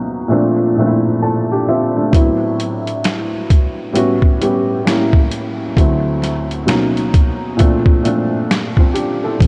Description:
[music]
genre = lo-fi hip hop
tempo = 66 BPM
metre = 4/4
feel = swing 62% on 16ths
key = unclear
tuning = A4 = 438 Hz
[part]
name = felt-muted upright piano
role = accompaniment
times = 0.0-9.5 s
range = D2 to A5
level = -18 LUFS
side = equal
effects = cassette tape, low-pass filter
[part]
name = boom bap sampler-style drum kit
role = drums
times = 2.1-9.5 s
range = hi-hat, kick drum, snare drum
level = -17 LUFS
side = equal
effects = none
[part]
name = vintage muted fingered electric bass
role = bass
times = 9.4-9.5 s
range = A1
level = -15 LUFS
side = equal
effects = none
[sound]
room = moderate huge ambient reverb, RT60 7.4 s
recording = dreamy mix soaked in reverb, cassette tape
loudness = -15 LUFS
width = mono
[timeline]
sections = 0.0-9.4 A section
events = filter sweep on felt piano 0.0-9.4; felt piano fill 0.8-2.1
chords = 0.3 Bbmaj9; 2.1 Am69; 3.9 A13; 4.9 A7b9; 5.8 D9; 6.7 Bmaj9; 7.6 Bbmaj9

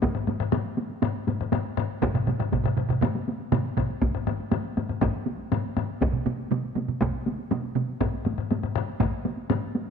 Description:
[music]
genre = japanese traditional, taiko drum ensemble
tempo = 120 BPM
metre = 4/4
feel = straight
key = none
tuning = none
[part]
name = solo taiko drums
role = percussion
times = 0.0-9.6 s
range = none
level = -29 LUFS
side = left 6 dB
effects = none
[part]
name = taiko ensemble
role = percussion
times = 0.0-9.9 s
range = none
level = -28 LUFS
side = right 1 dB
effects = none
[part]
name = taiko ensemble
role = percussion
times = 0.0-9.1 s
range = none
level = -31 LUFS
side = right 1 dB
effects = none
[part]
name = taiko ensemble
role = percussion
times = 2.0-7.9 s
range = none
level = -29 LUFS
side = right 6 dB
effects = none
[sound]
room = wet echo chamber reverb, RT60 2.2 s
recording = 1960s-style stereo with parts hard left and right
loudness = -24 LUFS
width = side -6 dB against mid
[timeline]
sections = 0.0-4.0 A section; 4.0-9.9 B section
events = none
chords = none

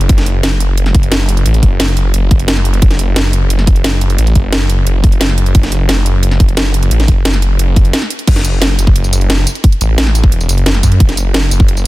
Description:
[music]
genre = dark technical drum and bass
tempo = 176 BPM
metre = 4/4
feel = straight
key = F# minor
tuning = A4 = 437 Hz
[part]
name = snarling distorted saw bass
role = bass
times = 0.0-11.8 s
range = E1 to F#2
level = -12 LUFS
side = equal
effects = tube saturation
[part]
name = drum and bass drum kit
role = drums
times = 0.0-11.8 s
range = crash cymbal, hi-hat, snare drum, tambourine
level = -16 LUFS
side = equal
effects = overdrive
[part]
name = electronic kick drum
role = drums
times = 0.1-11.7 s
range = none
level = -9 LUFS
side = equal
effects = none
[sound]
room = digital ambience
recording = dense, heavily limited modern master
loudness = -9 LUFS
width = side -18 dB against mid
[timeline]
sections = 0.0-8.3 A section; 8.3-11.9 A section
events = drop 0.0-8.3, 8.3-11.9; break 7.9-8.3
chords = none

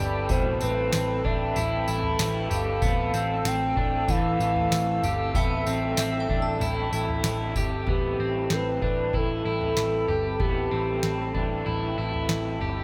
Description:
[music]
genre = dream pop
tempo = 95 BPM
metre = 4/4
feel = straight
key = A minor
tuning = A4 = 442 Hz
[part]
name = warbly nostalgic lead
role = melody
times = 0.0-11.7 s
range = G4 to G5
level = -32 LUFS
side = equal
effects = chorus, delay, shimmer reverb
[part]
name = raw garage guitar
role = accompaniment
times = 0.0-12.8 s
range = A2 to B4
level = -37 LUFS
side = equal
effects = overdrive, tremolo, analog chorus, shimmer reverb
[part]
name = hollow soft pad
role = sustained chords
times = 0.0-12.8 s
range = A4 to E6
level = -35 LUFS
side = equal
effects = chorus, shimmer reverb
[part]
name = electric guitar at the edge of break-up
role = arpeggios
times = 0.0-12.8 s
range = B2 to G4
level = -34 LUFS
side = equal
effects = subtle chorus, delay, shimmer reverb
[part]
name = vintage muted picked electric bass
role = bass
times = 0.0-12.8 s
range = G1 to A1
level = -33 LUFS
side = equal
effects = none
[part]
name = booming analog drum machine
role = drums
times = 0.3-12.8 s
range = kick drum, snare drum, tambourine, toms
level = -32 LUFS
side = equal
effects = none
[part]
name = glassy synth bell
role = texture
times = 5.4-7.3 s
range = E5 to A5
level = -40 LUFS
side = equal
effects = chorus, phaser, delay, shimmer reverb
[sound]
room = moderate scoring stage reverb, RT60 1.7 s, digital ambience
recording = none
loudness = -26 LUFS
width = mono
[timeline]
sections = 0.0-7.9 A section; 7.9-12.8 B section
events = none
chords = 0.0 Am9; 2.8 Fmaj7/A; 5.3 Am9

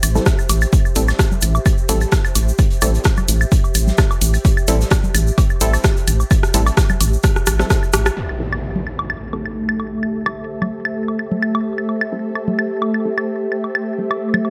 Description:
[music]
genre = minimal techno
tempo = 129 BPM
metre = 4/4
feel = swing 53% on 16ths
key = A minor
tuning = A4 = 439 Hz
[part]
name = rubbery square bass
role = bass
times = 0.0-8.1 s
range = A1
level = -19 LUFS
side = equal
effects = sidechain pumping
[part]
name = loose indie drum kit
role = drums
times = 0.0-8.2 s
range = hi-hat, snare drum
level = -34 LUFS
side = equal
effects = high-pass filter on hats, high-pass filter on snare, high-pass filter on room
[part]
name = techno drum kit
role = drums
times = 0.0-8.1 s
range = hi-hat, rim click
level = -22 LUFS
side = equal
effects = none
[part]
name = claves, woodblock and congas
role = percussion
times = 0.0-14.5 s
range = none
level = -26 LUFS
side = equal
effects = dub echo
[part]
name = tube shaker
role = percussion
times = 0.0-8.1 s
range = none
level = -30 LUFS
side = equal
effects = none
[part]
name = ethereal airy pad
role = texture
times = 0.0-14.5 s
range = A3 to E5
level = -27 LUFS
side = equal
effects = ensemble chorus, built-in reverb, sidechain pumping
[part]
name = filtered dub chord stab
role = stabs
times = 0.2-14.1 s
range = G3 to A4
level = -28 LUFS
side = equal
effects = chorus, dub echo
[part]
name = electronic kick drum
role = drums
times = 0.3-7.8 s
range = none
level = -18 LUFS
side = equal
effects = none
[part]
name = impact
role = sound effects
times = 8.2-10.0 s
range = none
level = -31 LUFS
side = equal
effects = none
[part]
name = swarming drone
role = texture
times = 8.9-14.5 s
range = A3 to A4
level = -31 LUFS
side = equal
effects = built-in reverb, sidechain pumping
[sound]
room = light reverb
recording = none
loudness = -18 LUFS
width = mono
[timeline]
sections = 0.0-8.2 A section; 8.2-14.5 B section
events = drum fill 7.2-8.2; impact 8.2-10.0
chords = 0.0 Am7

